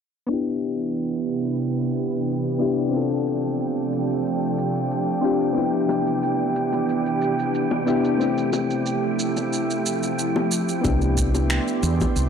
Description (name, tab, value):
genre	sunset chillout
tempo	91 BPM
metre	4/4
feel	straight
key	C major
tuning	A4 = 440 Hz
part	soft electric-piano-like synth keys	accompaniment	0.3-12.3 s	A3 to A4	-24 LUFS	moving between left 5 dB and right 7 dB	chorus, auto-pan, low-pass filter, analog delay
part	ethereal airy pad	sustained chords	0.7-12.3 s	C3 to C6	-26 LUFS	right 1 dB	ensemble chorus, built-in reverb
part	electronic shaker and finger snaps	drums	0.3-12.3 s	none	-30 LUFS	right 4 dB	overdrive
part	wind-like tuned noise texture	texture	3.0-12.3 s	G5 to C6	-32 LUFS	right 1 dB	built-in reverb
part	bongos	percussion	5.9-12.1 s	none	-29 LUFS	left 4 dB	none
part	woody fretless electric bass	bass	10.8-12.3 s	C2 to E2	-21 LUFS	right 1 dB	analog chorus
part	electronic kick drum	drums	10.8-12.1 s	none	-26 LUFS	equal	none
room	light reverb, digital ambience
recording	dry, gritty hardware recording, low-pass filter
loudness	-20 LUFS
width	side -7 dB against mid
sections	0.3-10.8 A section; 10.8-12.3 B section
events	filter sweep 0.3-10.8; filter sweep on synth keys 10.8-12.3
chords	0.3 Cmaj9; 2.9 G9sus4/C; 5.6 Cmaj9; 8.2 Fmaj9/C; 10.8 Cmaj9